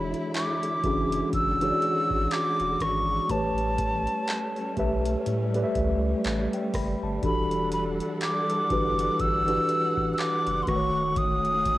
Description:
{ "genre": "contemporary R&B", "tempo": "61 BPM", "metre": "4/4", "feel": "swing 58% on 16ths", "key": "E dorian", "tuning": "A4 = 439 Hz", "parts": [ { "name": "mellow tine electric piano", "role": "accompaniment", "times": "0.0-11.8 s", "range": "D#3 to B5", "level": "-28 LUFS", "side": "equal", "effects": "medium stereo tremolo, cassette tape" }, { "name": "warm symphonic string section", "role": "sustained chords", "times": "0.0-11.8 s", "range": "D3 to F#5", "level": "-35 LUFS", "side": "equal", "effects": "cassette tape" }, { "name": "saturated sub bass", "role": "bass", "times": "0.0-11.8 s", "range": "D#1 to A2", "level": "-32 LUFS", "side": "equal", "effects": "none" }, { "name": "booming analog drum machine", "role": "drums", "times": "0.1-11.8 s", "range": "handclaps, hi-hat, kick drum, rim click", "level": "-32 LUFS", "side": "equal", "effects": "cassette tape" }, { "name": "breathy mellow silver concert flute", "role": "melody", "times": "0.4-11.8 s", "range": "A5 to E6", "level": "-27 LUFS", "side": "equal", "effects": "cassette tape, analog delay" } ], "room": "digital ambience", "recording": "home recording on cassette", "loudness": "-23 LUFS", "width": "side -16 dB against mid", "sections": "0.0-11.8 A section", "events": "none", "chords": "0.0 E13; 3.3 A9; 7.2 Em11; 10.7 B9/D# (rootless)", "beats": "0.34 1.33 2.31 | 3.29 4.28 5.26 6.25 | 7.23 8.21 9.20 10.18 | 11.16" }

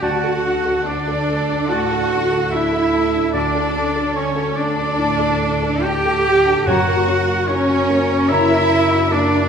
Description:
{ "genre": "cinematic, emotional film score for orchestra", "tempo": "73 BPM", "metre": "4/4", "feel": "rubato", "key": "unclear", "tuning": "A4 = 440 Hz", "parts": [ { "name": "dark studio violin section", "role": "melody", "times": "0.0-9.5 s", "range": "A4 to A#4", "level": "-30 LUFS", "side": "left 2 dB", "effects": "none" }, { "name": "rich cello", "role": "melody", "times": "0.0-9.5 s", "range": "C#4 to G4", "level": "-24 LUFS", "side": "right 2 dB", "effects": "none" }, { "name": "clear oboe", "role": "second line", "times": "0.0-9.5 s", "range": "C#5 to G5", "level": "-25 LUFS", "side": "right 1 dB", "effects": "none" }, { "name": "mellow hollow small flute group", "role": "second line", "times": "0.0-8.7 s", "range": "A5 to A#5", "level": "-26 LUFS", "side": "equal", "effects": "none" }, { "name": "warm clarinet", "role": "second line", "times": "0.0-8.6 s", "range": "C#5 to D5", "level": "-30 LUFS", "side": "left 3 dB", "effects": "none" }, { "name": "warm studio violin section", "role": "second line", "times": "0.0-9.5 s", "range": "C#5 to G5", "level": "-26 LUFS", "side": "left 1 dB", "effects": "none" }, { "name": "dark studio viola section", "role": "accompaniment", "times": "0.0-9.5 s", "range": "C#4 to G4", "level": "-24 LUFS", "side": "right 2 dB", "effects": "none" }, { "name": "warm grand piano", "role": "accompaniment", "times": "0.0-9.5 s", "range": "D2 to A#4", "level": "-24 LUFS", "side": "left 1 dB", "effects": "none" }, { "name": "dark French horn section", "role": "sustained chords", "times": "0.0-9.5 s", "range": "C#4 to G4", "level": "-24 LUFS", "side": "left 1 dB", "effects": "none" }, { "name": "warm studio cello section", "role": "bass", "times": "0.0-9.5 s", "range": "C#4 to G4", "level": "-24 LUFS", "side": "right 2 dB", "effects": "none" }, { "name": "warm studio double bass section", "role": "bass", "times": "0.0-9.5 s", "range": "F#1 to D2", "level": "-26 LUFS", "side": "right 1 dB", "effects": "none" }, { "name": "timpani", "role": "percussion", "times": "6.7-7.9 s", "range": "F#2", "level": "-28 LUFS", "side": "equal", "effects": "none" } ], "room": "wet scoring stage reverb, RT60 1.9 s", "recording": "minimal, uncompressed stereo recording, vinyl crackle", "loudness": "-15 LUFS", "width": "side -7 dB against mid", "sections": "0.0-9.5 A section", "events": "none", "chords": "0.0 D; 6.7 F#", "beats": "| 0.02 0.87 1.71 2.52 | 3.35 4.17 5.00 5.85 | 6.67 7.50 8.31 9.12" }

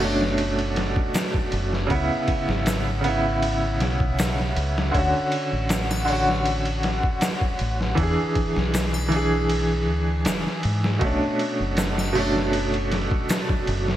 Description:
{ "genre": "trip hop", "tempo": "79 BPM", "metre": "4/4", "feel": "straight", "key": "B dorian", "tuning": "A4 = 441 Hz", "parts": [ { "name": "bright upright piano", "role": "accompaniment", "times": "0.0-14.0 s", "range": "B2 to G#4", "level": "-24 LUFS", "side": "right 1 dB", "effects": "tremolo, tape echo" }, { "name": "deep dub fingered electric bass", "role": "bass", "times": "0.0-14.0 s", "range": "E1 to G#2", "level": "-26 LUFS", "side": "equal", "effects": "none" }, { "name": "trip hop sampler-style drum kit", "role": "drums", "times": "0.0-14.0 s", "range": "hi-hat, kick drum, ride cymbal, snare drum", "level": "-26 LUFS", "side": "equal", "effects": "none" }, { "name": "egg shaker and triangle", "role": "percussion", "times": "1.1-13.5 s", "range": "none", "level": "-39 LUFS", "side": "left 4 dB", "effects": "none" } ], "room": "light reverb, digital ambience", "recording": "bright 1980s-style digital production, vinyl crackle", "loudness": "-20 LUFS", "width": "side -12 dB against mid", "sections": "0.0-14.0 A section", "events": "none", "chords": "0.0 Bm9; 1.9 C#m7; 4.9 Dmaj7; 8.0 E7; 11.0 Bm9", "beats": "0.39 1.15 | 1.91 2.67 3.42 4.18 | 4.94 5.70 6.46 7.22 | 7.98 8.74 9.50 10.26 | 11.02 11.78 12.54 13.30" }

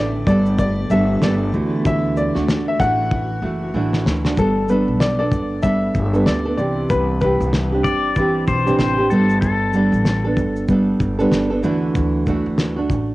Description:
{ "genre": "acoustic pop", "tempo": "95 BPM", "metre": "4/4", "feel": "swing 60% on 16ths", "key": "G major", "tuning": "A4 = 440 Hz", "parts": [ { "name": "clear upright piano", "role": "melody", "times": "0.0-7.8 s", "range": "A4 to F#5", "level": "-23 LUFS", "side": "left 2 dB", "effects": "cassette tape, tape echo" }, { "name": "nylon-string guitar", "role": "accompaniment", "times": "0.0-13.1 s", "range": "C3 to A4", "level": "-19 LUFS", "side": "right 2 dB", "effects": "cassette tape" }, { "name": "granular cloud pad", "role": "sustained chords", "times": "0.1-4.3 s", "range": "D3 to G4", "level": "-33 LUFS", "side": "left 1 dB", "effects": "built-in reverb, cassette tape" }, { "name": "upright bass", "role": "bass", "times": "0.0-13.1 s", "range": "F#1 to D2", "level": "-23 LUFS", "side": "equal", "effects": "none" }, { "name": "cloth-damped thuddy drum kit", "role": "drums", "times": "0.3-13.1 s", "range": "kick drum, shaker, snare drum", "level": "-22 LUFS", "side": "left 1 dB", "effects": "cassette tape" }, { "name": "pedal steel guitar", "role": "second line", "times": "7.8-10.6 s", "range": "A4 to D5", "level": "-22 LUFS", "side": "left 4 dB", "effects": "cassette tape" } ], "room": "light reverb, small room ambience", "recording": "home recording on cassette, nothing above 10.4 kHz", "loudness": "-16 LUFS", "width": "side -18 dB against mid", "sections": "0.0-4.4 A section; 4.4-13.1 B section", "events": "drum fill 3.1-4.4", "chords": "0.0 Gadd9; 1.5 Dadd9; 4.4 Gadd9; 6.6 Cadd9; 9.1 Gadd9; 11.6 Dadd9", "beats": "0.58 1.22 | 1.85 2.48 3.11 3.74 | 4.37 5.00 5.64 6.27 | 6.90 7.53 8.16 8.79 | 9.43 10.06 10.69 11.32 | 11.95 12.59" }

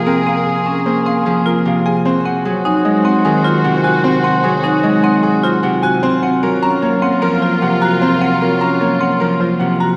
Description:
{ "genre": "classical, minimalist pattern music", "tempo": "151 BPM", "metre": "5/4", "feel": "straight", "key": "unclear", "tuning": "A4 = 440 Hz", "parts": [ { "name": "clear grand piano", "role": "melody", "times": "0.0-10.0 s", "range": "Ab4 to Bb5", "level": "-22 LUFS", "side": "equal", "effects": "none" }, { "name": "bright oboe", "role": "second line", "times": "0.0-9.8 s", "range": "F4 to Ab4", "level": "-26 LUFS", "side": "equal", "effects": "none" }, { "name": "Celtic harp", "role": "accompaniment", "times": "0.0-10.0 s", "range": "C3 to C4", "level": "-18 LUFS", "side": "equal", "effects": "none" }, { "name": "rich studio string section", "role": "sustained chords", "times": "0.0-9.8 s", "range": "F4 to C5", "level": "-27 LUFS", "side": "equal", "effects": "none" }, { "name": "marimba with medium hard mallets", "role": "arpeggios", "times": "0.0-10.0 s", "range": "C4 to Ab4", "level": "-21 LUFS", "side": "equal", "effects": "none" } ], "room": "wet church reverb, RT60 3.1 s", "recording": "recorded in a church or concert hall, vinyl crackle", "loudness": "-15 LUFS", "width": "mono", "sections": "0.0-10.0 A section", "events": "none", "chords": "0.0 Bbm7; 2.1 Ab7; 6.0 Gbmaj7", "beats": "| 0.07 0.47 0.86 1.26 1.66 | 2.05 2.45 2.85 3.25 3.64 | 4.04 4.44 4.84 5.23 5.63 | 6.03 6.42 6.82 7.22 7.62 | 8.02 8.41 8.81 9.21 9.60" }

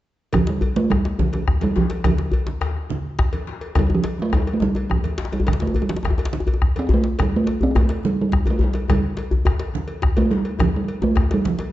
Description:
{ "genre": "west african traditional, West African drum ensemble", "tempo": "140 BPM (dotted quarters)", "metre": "12/8", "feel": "straight", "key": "F major pentatonic", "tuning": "A4 = 440 Hz", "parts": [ { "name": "talking drum", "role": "melody", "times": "0.3-11.7 s", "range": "F3 to C4", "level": "-21 LUFS", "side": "right 2 dB", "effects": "slapback echo" }, { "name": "bombo", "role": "percussion", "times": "0.3-11.4 s", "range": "none", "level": "-23 LUFS", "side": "equal", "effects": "none" }, { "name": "congas", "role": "percussion", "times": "0.3-11.6 s", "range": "none", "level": "-31 LUFS", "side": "right 5 dB", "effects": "none" }, { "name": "cowbell", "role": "percussion", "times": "0.3-11.7 s", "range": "none", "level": "-34 LUFS", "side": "left 2 dB", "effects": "none" }, { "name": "djembe", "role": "percussion", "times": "0.3-11.6 s", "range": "none", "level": "-27 LUFS", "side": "left 3 dB", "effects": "none" }, { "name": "djembe", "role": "percussion", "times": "0.5-11.7 s", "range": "none", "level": "-24 LUFS", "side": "left 2 dB", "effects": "none" } ], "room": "moderate recital hall reverb, RT60 1.8 s", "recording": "dark, warm production, nothing above 7.9 kHz", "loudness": "-18 LUFS", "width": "side -14 dB against mid", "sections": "0.3-11.7 A section", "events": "none", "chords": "none", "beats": "| 0.33 0.76 1.19 1.61 | 2.04 2.47 2.90 3.33 | 3.76 4.18 4.61 5.04 | 5.47 5.90 6.33 6.75 | 7.18 7.61 8.04 8.46 | 8.89 9.32 9.75 10.17 | 10.60 11.03 11.45" }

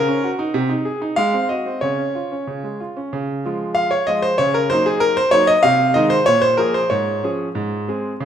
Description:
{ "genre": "classical-period piano sonatina", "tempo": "95 BPM", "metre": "2/4", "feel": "rubato", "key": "Db major", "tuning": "A4 = 440 Hz", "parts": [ { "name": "clear concert grand piano", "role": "solo", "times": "0.0-8.2 s", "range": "Ab2 to F5", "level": "-16 LUFS", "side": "equal", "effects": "none" } ], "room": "wet recital hall reverb, RT60 1.7 s", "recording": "none", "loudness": "-16 LUFS", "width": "side -9 dB against mid", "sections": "0.0-3.1 A section; 3.1-8.2 A section", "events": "none", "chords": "0.0 Ebm7/Db; 0.6 Ab/C; 1.2 Ab7; 1.8 Db; 4.4 Ebm7/Db; 5.6 Ab/C; 6.3 Bb5; 6.9 Db/Ab; 7.6 Ab", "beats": "| 0.55 1.18 | 1.83 2.48 | 3.13 3.76 | 4.39 5.02 | 5.64 6.26 | 6.90 7.55 | 8.20" }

